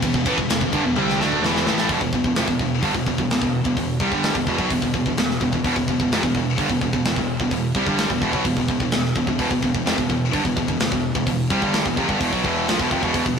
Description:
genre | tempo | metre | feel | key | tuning
heavy metal | 128 BPM | 4/4 | straight | E minor | A4 = 442 Hz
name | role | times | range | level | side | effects
distorted electric guitar | riff | 0.0-13.4 s | E2 to D4 | -23 LUFS | right 6 dB | overdrive
heavy high-gain guitar | riff | 0.0-13.4 s | E2 to D4 | -24 LUFS | left 6 dB | distortion
heavy high-gain guitar | riff | 0.0-1.9 s | E2 to D4 | -30 LUFS | equal | none
fuzz fingered electric bass | bass | 0.0-13.4 s | E1 to D2 | -30 LUFS | left 1 dB | overdrive
tight metal drum kit | drums | 0.0-13.4 s | hi-hat, kick drum, ride cymbal, snare drum, toms | -25 LUFS | left 1 dB | none
room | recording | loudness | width
light reverb | rough rehearsal-room recording | -18 LUFS | side -6 dB against mid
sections
0.0-1.9 A section; 1.9-13.4 B section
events
drum fill 1.0-1.9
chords
0.0 Em

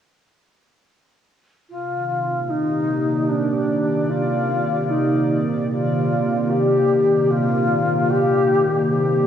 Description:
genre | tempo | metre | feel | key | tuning
ambient | 75 BPM | 4/4 | straight | unclear | A4 = 440 Hz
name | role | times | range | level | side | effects
reedy wooden-headed alto flute | melody | 1.7-9.3 s | D4 to G4 | -20 LUFS | left 2 dB | none
airy breathy pad | sustained chords | 1.9-9.3 s | C3 to D5 | -21 LUFS | right 1 dB | chorus
analog drone | drone | 2.6-9.3 s | Bb2 to C5 | -36 LUFS | equal | none
room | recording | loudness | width
wet lush hall reverb, RT60 2.4 s | worn, warbling old tape, cassette tape, warbly pitch drift | -17 LUFS | side -9 dB against mid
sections
1.7-9.3 A section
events
filter sweep on analog synth pad 1.7-9.3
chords
1.7 Cm9

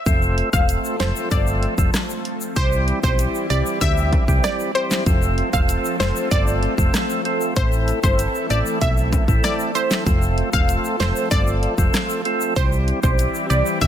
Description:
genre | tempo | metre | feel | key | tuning
dancehall | 96 BPM | 4/4 | straight | unclear | A4 = 442 Hz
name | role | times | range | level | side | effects
percussive tonewheel organ | accompaniment | 0.1-13.9 s | G3 to A4 | -24 LUFS | right 1 dB | overdrive, chorus vibrato, slow rotary speaker
lush unison pad | sustained chords | 0.1-13.9 s | E3 to A4 | -28 LUFS | equal | chorus, phaser, sidechain pumping
solid FM bass | bass | 0.1-13.9 s | E1 to D2 | -21 LUFS | equal | none
pop drum kit | drums | 0.1-13.9 s | handclaps, hi-hat, kick drum, rim click, snare drum | -21 LUFS | equal | none
tube shaker and timbales | percussion | 0.1-13.9 s | none | -34 LUFS | left 8 dB | none
analog pluck | melody | 0.5-13.9 s | C5 to F5 | -25 LUFS | equal | chorus, tape echo
room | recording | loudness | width
light reverb | dense, heavily limited modern master | -17 LUFS | side -10 dB against mid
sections
0.1-13.9 A section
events
none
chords
0.1 F; 2.6 C; 5.1 F; 7.6 Am; 10.1 F; 12.6 C

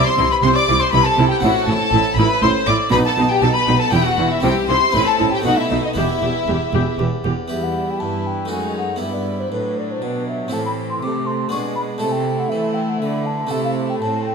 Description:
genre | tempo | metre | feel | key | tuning
classical, baroque-style concerto movement with solo episodes | 120 BPM | 3/4 | straight | E minor | A4 = 440 Hz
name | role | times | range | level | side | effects
mellow hollow baroque flute | melody | 0.0-14.3 s | B4 to D6 | -22 LUFS | left 2 dB | none
warm chamber violin section | melody | 0.0-14.3 s | G4 to D6 | -24 LUFS | left 4 dB | none
rich chamber violin section | second line | 0.0-14.3 s | C4 to D5 | -25 LUFS | left 2 dB | none
dark chamber viola section | accompaniment | 0.0-14.3 s | E3 to G4 | -24 LUFS | right 1 dB | none
harpsichord | accompaniment | 0.0-14.3 s | E2 to A4 | -25 LUFS | equal | none
dark chamber cello section | bass | 0.2-14.3 s | E2 to E3 | -23 LUFS | right 3 dB | none
rich chamber double bass section | bass | 0.2-7.3 s | E1 to C2 | -23 LUFS | right 4 dB | none
room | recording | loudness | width
moderate recital hall reverb, RT60 1.6 s | none | -16 LUFS | side -5 dB against mid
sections
0.0-7.5 A section; 7.5-14.3 B section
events
none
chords
0.0 C; 1.4 Am69; 2.9 B; 3.9 E5; 4.4 C; 4.9 Am9; 5.4 B7; 6.0 Em; 8.5 D#dim/F#; 9.0 Em/G; 10.5 Am; 11.5 G#dim/B; 12.0 Am/C; 13.5 Am

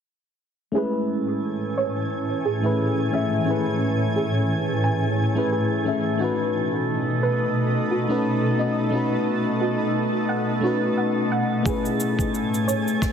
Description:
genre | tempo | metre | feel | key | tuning
sunset chillout | 88 BPM | 4/4 | swing 56% on 16ths | A lydian | A4 = 436 Hz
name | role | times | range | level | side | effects
mellow FM electric piano | accompaniment | 0.7-13.1 s | G#3 to E5 | -25 LUFS | moving between left 3 dB and right 6 dB | chorus, auto-pan, low-pass filter, tape echo
shimmering ambient pad | sustained chords | 1.3-13.1 s | A2 to G#5 | -25 LUFS | equal | chorus, built-in reverb
soft round pluck | arpeggios | 0.8-13.0 s | F#4 to G#5 | -30 LUFS | right 3 dB | lush chorus, tape echo
drifting glass-harmonics texture | texture | 1.1-13.1 s | A3 to A4 | -28 LUFS | left 2 dB | chorus, built-in reverb
cabasa and rim click | drums | 11.7-13.1 s | none | -35 LUFS | equal | low-pass filter on snare, low-pass filter on perc, low-pass filter on room
electronic kick drum | drums | 11.7-13.1 s | none | -25 LUFS | equal | none
room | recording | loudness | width
wet scoring stage reverb, RT60 2.0 s, studio ambience | heavily compressed radio sound | -21 LUFS | side -7 dB against mid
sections
0.8-13.1 A section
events
filter sweep on FM electric piano 0.8-13.1; filter sweep on synth arpeggio sound 0.8-13.1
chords
0.8 Amaj7; 6.2 B7; 11.7 Amaj7

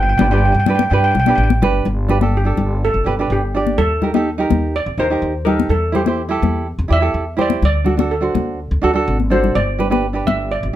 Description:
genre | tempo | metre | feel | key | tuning
calypso | 125 BPM | 4/4 | straight | G major | A4 = 440 Hz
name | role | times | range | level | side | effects
steel pan | melody | 0.0-10.8 s | G4 to G5 | -20 LUFS | right 1 dB | none
upright bass | bass | 0.0-10.7 s | G1 to G2 | -19 LUFS | equal | none
tenor ukulele | accompaniment | 0.2-10.8 s | D4 to D5 | -19 LUFS | right 4 dB | none
congas | percussion | 0.2-10.4 s | none | -20 LUFS | left 6 dB | none
room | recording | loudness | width
moderate studio ambience, RT60 0.5 s | none | -14 LUFS | side -12 dB against mid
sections
0.0-1.9 A section; 1.9-10.8 B section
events
steel pan solo 1.9-10.8; drum fill 9.2-9.6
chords
0.0 G; 1.9 Gadd9; 3.8 Eb; 5.7 C/E; 7.6 D; 9.6 G

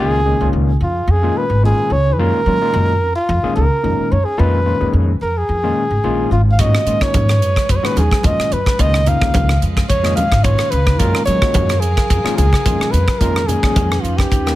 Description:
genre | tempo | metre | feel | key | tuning
electric jazz fusion | 109 BPM | 4/4 | straight | unclear | A4 = 440 Hz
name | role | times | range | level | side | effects
trumpet with bucket mute | melody | 0.0-14.6 s | E#4 to E#5 | -19 LUFS | right 1 dB | none
overdriven tine electric piano | accompaniment | 0.0-14.6 s | A#2 to G#4 | -21 LUFS | left 3 dB | wide subtle chorus
upright bass | bass | 0.0-14.5 s | G#1 to F#3 | -16 LUFS | equal | none
evolving wavetable pad | sustained chords | 6.6-14.6 s | C#3 to E#5 | -28 LUFS | right 1 dB | chorus, built-in reverb
crisp fusion drum kit | drums | 6.6-14.6 s | hi-hat, kick drum, rim click | -18 LUFS | equal | none
congas | percussion | 6.6-14.4 s | none | -24 LUFS | right 1 dB | none
room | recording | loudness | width
light reverb | none | -13 LUFS | side -15 dB against mid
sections
0.0-14.6 A section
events
none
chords
0.0 C#; 2.2 F#maj9; 4.4 C#7/E#; 6.6 G#m11; 8.8 C#7; 11.0 F#maj9; 13.2 C#7/E#

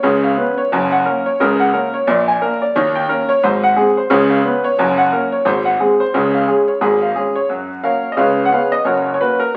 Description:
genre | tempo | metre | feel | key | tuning
jazz, stride piano | 177 BPM | 4/4 | swing 59% on 8ths | F# major | A4 = 439 Hz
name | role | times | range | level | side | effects
clear grand piano | solo | 0.0-9.6 s | F#1 to G#5 | -16 LUFS | equal | none
room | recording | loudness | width
wet large studio reverb, RT60 1.2 s | very old 78 rpm record, vinyl crackle | -16 LUFS | mono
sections
0.0-7.5 A section; 7.5-9.6 B section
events
none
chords
0.0 C#7; 0.7 F#; 2.1 A#7; 2.7 D#7; 3.4 G#7; 4.1 C#7; 4.8 F#; 5.5 G#7; 6.1 C#; 7.5 F#; 8.2 C#5; 8.9 F#

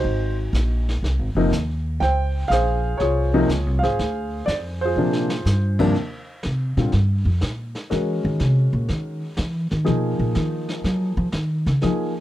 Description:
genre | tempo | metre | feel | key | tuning
jazz piano trio | 122 BPM | 4/4 | swing 69% on 8ths | unclear | A4 = 441 Hz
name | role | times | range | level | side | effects
warm concert grand piano | melody | 0.0-12.1 s | Eb2 to G5 | -22 LUFS | equal | none
upright bass | bass | 0.0-12.0 s | Gb1 to F#3 | -21 LUFS | equal | none
vintage brush drum kit | drums | 0.1-12.2 s | brushed snare drum, crash cymbal, hi-hat, kick drum, snare drum | -33 LUFS | equal | none
room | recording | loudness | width
little or no reverb | dry, close 1970s-style studio recording | -19 LUFS | side -14 dB against mid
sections
0.0-5.9 A section; 5.9-12.2 B section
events
drum fill 5.0-5.5; upright bass solo 5.9-12.2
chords
0.0 Ab7; 2.0 Dbmaj7; 4.0 Dm7b5; 5.0 Bb13; 5.9 Fsus24; 7.9 Gb13; 9.9 Bmaj7

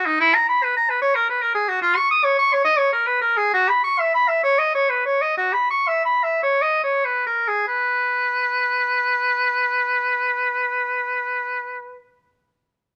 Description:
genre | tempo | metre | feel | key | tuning
classical, baroque-style fantasia for unaccompanied oboe | 45-76 BPM (dotted quarters) | 12/8 | rubato | unclear | A4 = 441 Hz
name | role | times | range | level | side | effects
clear oboe | solo | 0.0-12.0 s | D#4 to D#6 | -20 LUFS | equal | none
room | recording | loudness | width
light reverb | close, detailed microphones | -20 LUFS | mono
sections
0.0-7.7 A section; 7.7-12.5 B section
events
slowing down 1.3-7.7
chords
none

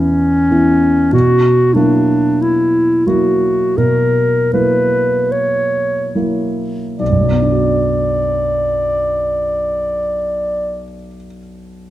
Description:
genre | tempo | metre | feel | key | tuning
classical, romantic duo for clarinet and grand piano | 34-50 BPM | 4/4 | rubato | B minor | A4 = 440 Hz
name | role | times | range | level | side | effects
clear clarinet | melody | 0.0-10.8 s | C#4 to D5 | -14 LUFS | equal | none
warm concert grand piano | accompaniment | 0.0-11.9 s | B1 to F#4 | -17 LUFS | right 1 dB | none
room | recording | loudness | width
moderate scoring stage reverb, RT60 1.8 s | close, detailed microphones | -12 LUFS | side -14 dB against mid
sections
0.0-7.0 A section; 7.0-11.9 B section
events
slowing down 0.0-7.0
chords
0.0 E5; 1.1 F#7/B; 7.0 Bm

